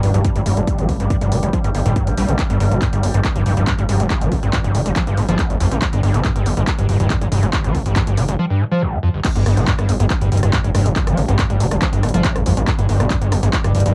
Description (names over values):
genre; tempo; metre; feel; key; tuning
driving peak-time techno; 140 BPM; 4/4; straight; unclear; A4 = 441 Hz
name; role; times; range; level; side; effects
overdriven acid bass; riff; 0.0-13.9 s; G1 to G3; -20 LUFS; equal; distortion, analog chorus, sidechain pumping, cassette tape, analog delay
gritty driven synth bass; bass; 0.0-13.9 s; D1 to Bb1; -23 LUFS; equal; sidechain pumping
overtone-sweeping drone; drone; 0.0-13.9 s; G2 to G3; -32 LUFS; equal; none
punchy analog drum machine; drums; 0.0-13.9 s; crash cymbal, handclaps, hi-hat, rim click; -28 LUFS; equal; cassette tape
electronic kick drum; drums; 0.2-13.6 s; none; -23 LUFS; equal; overdrive, cassette tape
room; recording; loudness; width
moderate booth ambience, RT60 0.2 s; home recording on cassette; -17 LUFS; mono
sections
0.0-9.2 A section; 9.2-13.9 B section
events
drop 9.2-13.9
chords
0.0 G5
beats
0.25 | 0.68 1.10 1.53 1.96 | 2.39 2.82 3.25 3.68 | 4.11 4.53 4.96 5.39 | 5.82 6.25 6.68 7.11 | 7.53 7.96 8.39 8.82 | 9.25 9.68 10.11 10.53 | 10.96 11.39 11.82 12.25 | 12.68 13.11 13.53